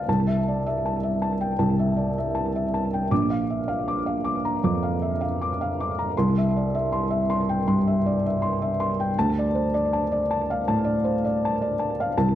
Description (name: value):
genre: neoclassical minimalist piano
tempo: 80 BPM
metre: 4/4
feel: rubato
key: D minor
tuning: A4 = 440 Hz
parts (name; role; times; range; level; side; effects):
- felt-muted upright piano; solo; 0.0-12.3 s; Bb1 to D6; -22 LUFS; equal; slapback echo
room: light reverb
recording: dry, close 1970s-style studio recording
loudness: -22 LUFS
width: side -12 dB against mid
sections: 0.0-12.3 A section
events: none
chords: 0.1 Am7/C; 3.1 Bb; 6.1 C; 9.1 Dm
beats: | 0.07 0.84 1.60 2.35 | 3.11 3.86 4.62 5.38 | 6.14 6.89 7.65 8.40 | 9.14 9.90 10.65 11.40 | 12.15